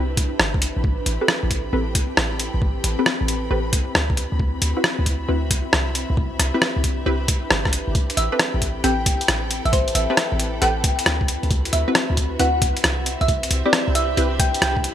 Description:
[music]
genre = UK garage, two-step garage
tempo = 135 BPM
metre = 4/4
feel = swing 67% on 16ths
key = A dorian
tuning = A4 = 440 Hz
[part]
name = ethereal airy pad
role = sustained chords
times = 0.0-14.9 s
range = C4 to B4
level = -32 LUFS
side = left 1 dB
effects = ensemble chorus, built-in reverb, sidechain pumping
[part]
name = punchy chord stab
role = stabs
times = 0.0-14.3 s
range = C4 to B4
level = -26 LUFS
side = left 1 dB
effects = chorus, digital delay
[part]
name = short 808-style bass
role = bass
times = 0.0-14.9 s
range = G1 to D2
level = -24 LUFS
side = equal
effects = none
[part]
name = rich studio string section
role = texture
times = 0.0-14.9 s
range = C4 to B5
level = -33 LUFS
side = equal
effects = sidechain pumping
[part]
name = boom bap sampler-style drum kit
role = drums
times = 0.2-14.9 s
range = hi-hat, rim click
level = -21 LUFS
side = equal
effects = none
[part]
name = electronic kick drum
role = drums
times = 0.2-14.8 s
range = none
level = -22 LUFS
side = equal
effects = none
[part]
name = thumb-piano-like synth pluck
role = melody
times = 8.2-14.9 s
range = C5 to G5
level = -24 LUFS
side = equal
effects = lush chorus
[sound]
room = light reverb, digital ambience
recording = bright 1980s-style digital production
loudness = -18 LUFS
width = side -10 dB against mid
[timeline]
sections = 0.0-14.9 A section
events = fade-in on string section 0.0-14.9; filter sweep on synth stab 0.0-14.9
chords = 0.0 Cmaj7; 0.8 Am9; 4.2 D13; 6.0 Cmaj7; 8.0 Am9; 11.3 D13; 13.1 Am9 (rootless)

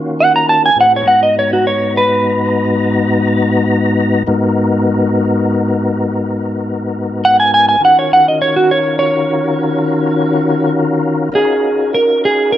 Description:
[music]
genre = blues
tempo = 68 BPM (dotted quarters)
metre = 12/8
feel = straight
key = unclear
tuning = A4 = 441 Hz
[part]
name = tonewheel organ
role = sustained chords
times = 0.0-12.6 s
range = Ab2 to Bb5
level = -14 LUFS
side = left 2 dB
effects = slow rotary speaker, overdrive, chorus vibrato, plate reverb
[part]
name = clean lap steel guitar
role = melody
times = 0.2-12.6 s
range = Gb4 to Bb5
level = -11 LUFS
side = right 1 dB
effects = slapback echo, plate reverb
[sound]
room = moderate club reverb, RT60 0.5 s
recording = dark, warm production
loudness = -11 LUFS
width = side -12 dB against mid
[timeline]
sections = 0.0-12.6 A section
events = electric slide guitar solo 0.0-12.6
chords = 0.0 Ebm7; 0.7 Abm7; 7.8 Ebm7

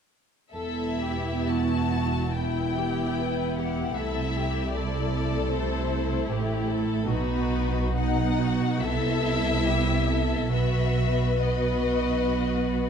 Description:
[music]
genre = classical, slow romantic movement for string orchestra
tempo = 59-80 BPM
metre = 4/4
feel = rubato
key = E minor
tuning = A4 = 440 Hz
[part]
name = rich studio violin section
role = melody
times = 0.5-12.9 s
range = B4 to A5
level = -32 LUFS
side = left 6 dB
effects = none
[part]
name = rich studio violin section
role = second line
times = 0.5-12.9 s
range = D#4 to B4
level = -32 LUFS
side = left 4 dB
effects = none
[part]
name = clear studio viola section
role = accompaniment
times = 0.5-12.9 s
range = A3 to F#4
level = -29 LUFS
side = right 1 dB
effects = none
[part]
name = rich studio cello section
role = bass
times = 0.5-12.9 s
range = E2 to C3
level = -31 LUFS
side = right 3 dB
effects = none
[part]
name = warm studio double bass section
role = bass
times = 0.5-12.9 s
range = E1 to C2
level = -29 LUFS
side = right 3 dB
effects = none
[sound]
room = moderate concert hall reverb, RT60 2.0 s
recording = dark, warm production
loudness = -23 LUFS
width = side -7 dB against mid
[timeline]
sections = 0.5-12.9 A section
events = none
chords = 0.5 Em; 4.0 Am/C; 7.1 B; 8.8 Cmaj7; 10.5 B

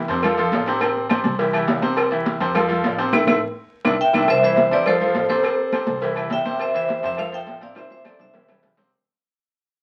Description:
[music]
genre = latin, salsa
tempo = 207 BPM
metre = 4/4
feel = straight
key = C major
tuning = A4 = 440 Hz
[part]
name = bright grand piano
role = accompaniment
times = 0.0-8.9 s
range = C3 to C5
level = -26 LUFS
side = equal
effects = none
[part]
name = upright bass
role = bass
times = 0.0-8.9 s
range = A1 to F2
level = -34 LUFS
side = equal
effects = none
[part]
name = agogo bells and timbales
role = percussion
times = 0.1-8.8 s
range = none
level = -32 LUFS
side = equal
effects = none
[part]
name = congas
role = percussion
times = 0.1-8.8 s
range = none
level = -28 LUFS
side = equal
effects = none
[part]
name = cowbell and bongos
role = percussion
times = 0.1-8.9 s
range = none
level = -28 LUFS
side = equal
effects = none
[part]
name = claves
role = percussion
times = 0.2-8.6 s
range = none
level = -30 LUFS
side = equal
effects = none
[part]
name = vibraphone with hard mallets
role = melody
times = 4.0-8.6 s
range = A4 to G5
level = -22 LUFS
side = equal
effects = none
[sound]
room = wet studio reverb, RT60 0.6 s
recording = very old 78 rpm record, vinyl crackle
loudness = -20 LUFS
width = mono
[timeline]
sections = 0.0-4.3 A section; 4.3-8.9 B section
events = band accent 3.1-4.3; drum fill 3.7-4.3, 7.8-8.9; fade-out 4.3-8.9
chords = 0.2 F; 0.8 Am; 1.4 C; 2.5 F; 3.1 Am; 3.7 Cadd9; 4.3 C; 4.9 F; 5.4 Am; 6.0 C; 7.2 F; 7.8 Am (rootless); 8.3 C

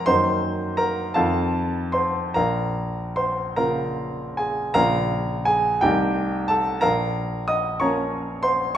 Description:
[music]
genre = classical, romantic character piece for solo piano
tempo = 47-63 BPM (dotted quarters)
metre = 6/8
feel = rubato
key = Bb minor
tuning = A4 = 441 Hz
[part]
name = warm grand piano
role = solo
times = 0.0-8.8 s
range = Bb1 to Eb6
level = -20 LUFS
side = equal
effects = none
[sound]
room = wet recital hall reverb, RT60 1.6 s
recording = minimal, uncompressed stereo recording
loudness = -20 LUFS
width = side -10 dB against mid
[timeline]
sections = 0.0-4.8 A section; 4.8-8.8 A section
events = none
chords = 0.1 Ebm/Gb; 1.1 F7; 2.4 Bbm; 5.8 Adim/C; 6.8 Bbm

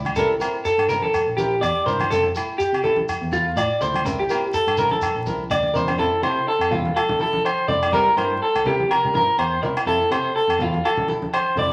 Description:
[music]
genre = highlife guitar band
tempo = 124 BPM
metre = 4/4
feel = swing 55% on 16ths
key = F major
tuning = A4 = 443 Hz
[part]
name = flamenco guitar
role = accompaniment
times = 0.0-11.7 s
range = G3 to Bb4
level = -31 LUFS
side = equal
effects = none
[part]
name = barky tine electric piano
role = bass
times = 0.0-11.7 s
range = Bb1 to C3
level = -32 LUFS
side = equal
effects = none
[part]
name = agogo bells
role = percussion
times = 0.1-11.5 s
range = none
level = -30 LUFS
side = equal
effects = none
[part]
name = congas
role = percussion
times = 0.1-11.7 s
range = none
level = -34 LUFS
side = equal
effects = none
[part]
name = electric guitar through a small old amp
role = arpeggios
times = 0.2-11.7 s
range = F4 to D5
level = -23 LUFS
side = equal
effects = none
[part]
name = shekere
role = percussion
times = 0.2-5.9 s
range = none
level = -39 LUFS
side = equal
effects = none
[sound]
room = wet large studio reverb, RT60 1.1 s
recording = vinyl crackle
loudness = -21 LUFS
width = mono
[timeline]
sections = 0.0-6.0 A section; 6.0-11.7 B section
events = none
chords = 0.2 C7; 2.1 Fmaj7; 4.1 C7; 6.0 Fmaj7; 7.9 C7; 9.9 Fmaj7

